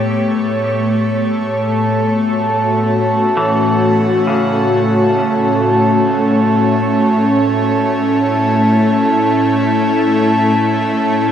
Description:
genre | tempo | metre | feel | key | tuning
ambient | free time | none | none | unclear | A4 = 440 Hz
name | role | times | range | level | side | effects
airy breathy pad | sustained chords | 0.0-11.3 s | A2 to C#5 | -14 LUFS | equal | chorus, shimmer reverb
semi-hollow electric guitar | arpeggios | 0.0-7.7 s | C#3 to G4 | -26 LUFS | left 1 dB | spring reverb, diffuse ambient delay, shimmer reverb
bowed-like drone | drone | 2.3-11.3 s | A3 | -21 LUFS | left 3 dB | built-in reverb
glass harmonica | texture | 1.4-11.3 s | A4 to A5 | -18 LUFS | right 1 dB | shimmer reverb
room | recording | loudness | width
wet huge ambient reverb, RT60 7.7 s | none | -12 LUFS | side -9 dB against mid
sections
0.0-11.3 A section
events
fade-out on clean electric guitar 0.0-11.3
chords
0.0 A7; 1.4 F#m/A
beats
free time

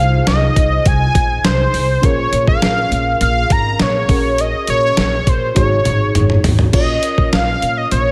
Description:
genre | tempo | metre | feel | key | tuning
1980s-style pop | 102 BPM | 4/4 | straight | unclear | A4 = 440 Hz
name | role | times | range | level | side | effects
unison lead | melody | 0.0-8.1 s | C5 to Bb5 | -19 LUFS | equal | none
FM electric piano with soft pad layer | accompaniment | 0.0-8.1 s | Db4 to Db5 | -26 LUFS | equal | chorus
upright bass | bass | 0.0-8.1 s | Ab1 to Bb2 | -20 LUFS | equal | none
clean 12-bit digital drum machine | drums | 0.3-8.1 s | crash cymbal, hi-hat, kick drum, snare drum, toms | -18 LUFS | equal | none
room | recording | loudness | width
light reverb, digital ambience | none | -15 LUFS | mono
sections
0.0-6.7 A section; 6.7-8.1 B section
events
drum fill 5.6-6.7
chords
0.0 Fm7/C; 2.0 Bbm7; 4.1 Gbadd9/Bb; 5.6 Ab7sus4; 6.7 Bbm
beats
0.27 0.86 1.45 | 2.03 2.62 3.21 3.80 | 4.39 4.98 5.56 6.15 | 6.74 7.33 7.92

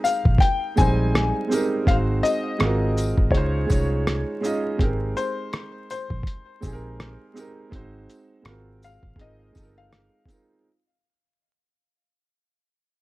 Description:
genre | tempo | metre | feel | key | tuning
lo-fi hip hop | 82 BPM | 4/4 | swing 56% on 16ths | Ab major | A4 = 441 Hz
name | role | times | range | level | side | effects
felt-muted upright piano | melody | 0.0-10.3 s | C5 to Ab5 | -26 LUFS | left 4 dB | plate reverb
warm upright piano | accompaniment | 0.0-10.7 s | G3 to Eb5 | -26 LUFS | right 2 dB | cassette tape
tambourine | percussion | 0.0-10.5 s | none | -42 LUFS | left 5 dB | none
lo-fi sampler-style drum kit | drums | 0.1-10.5 s | hi-hat, kick drum, rim click, shaker | -22 LUFS | equal | none
vintage muted fingered electric bass | bass | 0.3-10.1 s | G1 to Db2 | -24 LUFS | equal | none
room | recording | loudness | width
moderate studio ambience, RT60 0.5 s | vinyl crackle | -20 LUFS | side -18 dB against mid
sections
0.0-10.6 A section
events
fade-out 0.0-10.6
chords
0.0 Abmaj9; 1.9 Ab7; 2.6 Ab13; 3.3 Dbmaj9; 4.8 Abmaj9; 7.7 Ab7; 8.5 Ab13; 9.2 Ab69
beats
0.40 1.13 | 1.86 2.60 3.33 4.06 | 4.79 5.52 6.26 6.99 | 7.72 8.45 9.18 9.91

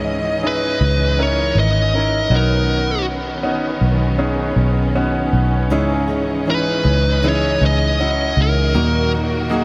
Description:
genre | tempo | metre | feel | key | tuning
pop ballad | 79 BPM | 4/4 | straight | unclear | A4 = 444 Hz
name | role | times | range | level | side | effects
clear concert grand piano | accompaniment | 0.0-9.6 s | G#2 to A#4 | -24 LUFS | equal | subtle chorus
warm studio string section | sustained chords | 0.0-9.6 s | D#3 to D#5 | -27 LUFS | equal | none
vintage muted fingered electric bass | bass | 0.0-9.6 s | G#1 to D#2 | -21 LUFS | equal | none
fuzz lead guitar | melody | 0.5-9.1 s | A#4 to D#5 | -23 LUFS | equal | distortion, analog delay
fingerpicked steel-string acoustic guitar | arpeggios | 5.7-9.6 s | C#3 to G#4 | -27 LUFS | equal | none
room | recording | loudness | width
moderate huge ambient reverb, RT60 6.6 s | dreamy mix soaked in reverb | -17 LUFS | mono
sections
0.0-9.6 A section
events
none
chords
0.0 C#madd9; 2.3 Badd9; 5.7 C#madd9; 8.8 D#m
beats
0.43 1.18 1.93 | 2.68 3.44 4.19 4.95 | 5.72 6.48 7.24 8.00 | 8.75 9.50

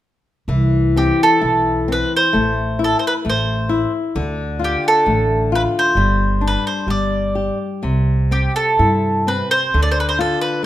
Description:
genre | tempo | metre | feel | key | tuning
fado-style ballad | 65 BPM | 2/4 | rubato | C major | A4 = 440 Hz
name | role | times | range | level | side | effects
flamenco guitar | accompaniment | 0.5-10.7 s | C3 to G4 | -21 LUFS | left 4 dB | none
upright bass | bass | 0.5-10.3 s | G1 to G2 | -20 LUFS | right 1 dB | none
mandolin | melody | 1.0-10.6 s | G4 to D5 | -17 LUFS | right 1 dB | none
room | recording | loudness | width
light reverb | minimal, uncompressed stereo recording | -15 LUFS | side -13 dB against mid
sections
0.5-10.7 A section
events
none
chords
0.5 C; 2.3 A5; 4.2 Dm; 6.0 Gsus4; 6.9 G5; 7.8 C; 9.7 Dm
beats
| 0.48 1.42 | 2.34 3.25 | 4.16 5.06 | 5.96 6.88 | 7.84 8.80 | 9.73 10.63

